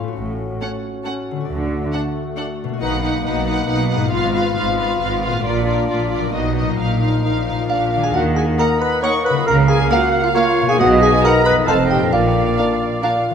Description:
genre	cinematic, playful, whimsical film cue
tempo	136 BPM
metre	3/4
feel	straight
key	unclear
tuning	A4 = 440 Hz
part	warm French horn section	sustained chords	0.0-13.2 s	F3 to F#4	-26 LUFS	left 3 dB	none
part	concert harp	arpeggios	0.0-13.3 s	F2 to F5	-25 LUFS	left 8 dB	none
part	muted chamber double bass section	bass	0.2-12.5 s	F1 to Eb2	-24 LUFS	right 3 dB	none
part	muted studio cello section	bass	0.2-12.5 s	F2 to Eb3	-24 LUFS	right 3 dB	none
part	muted studio violin section	melody	0.6-13.1 s	D5 to F#5	-27 LUFS	equal	none
part	muted chamber violin section	second line	0.6-13.3 s	F#4 to Db6	-27 LUFS	left 3 dB	none
part	muted studio viola section	accompaniment	0.6-13.1 s	Bb3 to C5	-26 LUFS	equal	none
part	music box	melody	7.7-13.3 s	F5 to Db6	-22 LUFS	right 4 dB	none
part	dark clarinet	second line	7.7-13.3 s	F4 to Db5	-20 LUFS	left 1 dB	none
part	mellow bassoon	accompaniment	8.1-13.1 s	Bb3 to C4	-24 LUFS	equal	none
part	mellow flute section	second line	8.2-13.2 s	D5 to Gb5	-25 LUFS	right 2 dB	none
part	clear oboe	second line	8.6-13.2 s	Db5 to F5	-22 LUFS	right 2 dB	none
room	wet scoring stage reverb, RT60 1.6 s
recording	none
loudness	-15 LUFS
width	side -7 dB against mid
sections	0.0-8.1 A section; 8.1-13.3 B section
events	none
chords	0.2 F#m/A; 1.5 D; 2.8 Bmaj7; 4.1 Fdim/Ab; 5.4 Bb; 6.3 B; 6.8 Bbsus4; 7.7 Bb; 8.1 Ebm; 9.5 Bbm/Db; 10.8 B6; 11.7 F7; 12.1 Bb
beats	| 0.17 0.61 1.05 | 1.49 1.93 2.37 | 2.81 3.25 3.69 | 4.12 4.57 5.01 | 5.45 5.89 6.34 | 6.79 7.24 7.69 | 8.14 8.59 9.03 | 9.47 9.91 10.36 | 10.80 11.24 11.68 | 12.13 12.58 13.03

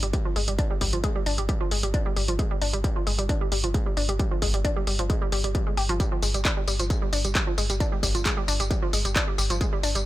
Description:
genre	driving peak-time techno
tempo	133 BPM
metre	4/4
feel	straight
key	unclear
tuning	A4 = 441 Hz
part	analog pluck	riff	0.0-10.0 s	F3 to G4	-30 LUFS	equal	chorus, sidechain pumping, ping-pong delay
part	saturated sub bass	bass	0.0-10.1 s	G1	-27 LUFS	equal	tube saturation, sidechain pumping, low-pass filter
part	punchy analog drum machine	drums	0.0-10.0 s	handclaps, hi-hat, tambourine	-28 LUFS	right 1 dB	none
part	electronic kick drum	drums	0.1-9.7 s	none	-26 LUFS	equal	distortion
room	little or no reverb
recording	none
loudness	-23 LUFS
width	side -16 dB against mid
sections	0.0-10.1 A section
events	none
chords	0.0 G5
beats	0.14 | 0.59 1.04 1.49 1.94 | 2.39 2.84 3.29 3.74 | 4.20 4.65 5.10 5.55 | 6.00 6.45 6.90 7.35 | 7.80 8.26 8.71 9.16 | 9.61

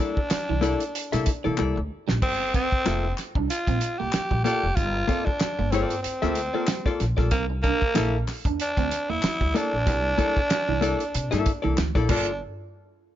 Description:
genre	funk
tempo	94 BPM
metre	4/4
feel	swing 56% on 16ths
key	unclear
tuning	A4 = 435 Hz
part	growling tenor saxophone	melody	0.0-12.4 s	Bb3 to G4	-27 LUFS	equal	plate reverb
part	hollow-body jazz guitar	accompaniment	0.0-12.3 s	Bb3 to E5	-28 LUFS	left 6 dB	tube saturation, plate reverb
part	electric guitar at the edge of break-up	riff	0.0-12.3 s	E3 to D4	-33 LUFS	right 11 dB	spring reverb
part	upright bass	bass	0.2-12.4 s	F1 to C3	-28 LUFS	equal	none
part	damped 70s drum kit	drums	0.2-12.3 s	crash cymbal, hi-hat, kick drum, snare drum	-26 LUFS	equal	none
part	group handclap	percussion	0.3-12.4 s	none	-36 LUFS	left 8 dB	none
room	light reverb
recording	nothing above 7.5 kHz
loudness	-22 LUFS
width	side -12 dB against mid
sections	0.0-12.4 A section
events	drum fill 1.6-2.2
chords	0.0 C13; 2.2 Gm9; 7.3 C13; 12.1 Gm9; 12.4 N.C.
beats	0.30 0.94 1.58 | 2.22 2.86 3.49 4.13 | 4.77 5.41 6.04 6.68 | 7.32 7.96 8.59 9.23 | 9.87 10.50 11.14 11.78

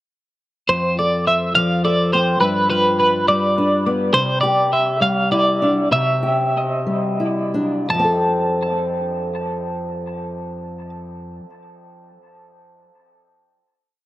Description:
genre	folk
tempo	56-70 BPM (dotted quarters)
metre	6/8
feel	straight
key	F major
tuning	A4 = 440 Hz
part	twelve-string electric guitar	melody	0.7-10.9 s	B4 to A5	-18 LUFS	equal	tremolo, dub echo
part	fingerpicked old ladder-braced acoustic guitar	accompaniment	0.7-11.5 s	F2 to A4	-20 LUFS	left 1 dB	dub echo
room	moderate spring reverb, RT60 1.3 s, small room ambience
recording	echo-heavy mix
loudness	-16 LUFS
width	side -16 dB against mid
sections	0.7-7.9 verse; 7.9-12.2 final chord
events	slowing down 4.1-7.9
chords	0.7 F; 2.4 G7; 4.1 Cadd9; 7.9 F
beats	| 0.69 1.55 | 2.41 3.27 | 4.13 5.01 | 5.91 6.86 | 7.89 8.97 | 10.05 11.13

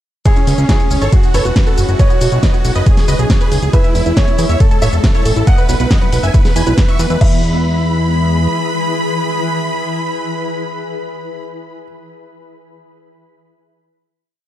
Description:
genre	uplifting trance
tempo	138 BPM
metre	4/4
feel	straight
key	E major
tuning	A4 = 440 Hz
part	big supersaw lead	melody	0.3-11.4 s	C#4 to C#6	-21 LUFS	right 1 dB	sidechain pumping, digital delay
part	warm grand piano	second line	0.3-11.8 s	G#4 to F#5	-24 LUFS	equal	digital delay
part	wide unison pluck	second line	0.3-11.8 s	C#4 to C#6	-28 LUFS	right 2 dB	none
part	shimmering ambient pad	sustained chords	1.0-11.4 s	E3 to B5	-23 LUFS	left 2 dB	chorus, built-in reverb, sidechain pumping
part	big-room dance drum kit	drums	0.3-7.3 s	crash cymbal, hi-hat, ride cymbal, shaker, snare drum	-22 LUFS	equal	none
part	electronic kick drum	drums	0.3-7.3 s	none	-12 LUFS	equal	none
part	fat analog bass	bass	0.5-8.5 s	E1 to E2	-15 LUFS	equal	sidechain pumping
part	tight sequenced synth	arpeggios	3.7-7.4 s	F#3 to A5	-24 LUFS	right 3 dB	chorus, sidechain pumping, digital delay
room	digital ambience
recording	dark, warm production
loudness	-11 LUFS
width	side -12 dB against mid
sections	0.3-7.2 drop; 7.2-10.7 final chord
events	drop 0.3-7.2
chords	0.3 C#m; 1.1 F#m7; 2.0 B; 2.9 C#m; 3.7 E; 4.6 A; 5.5 B; 6.3 E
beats	| 0.26 0.69 1.12 1.56 | 1.99 2.43 2.86 3.30 | 3.73 4.17 4.60 5.04 | 5.47 5.91 6.34 6.78 | 7.21 7.65 8.08 8.52 | 8.95 9.38 9.82 10.26

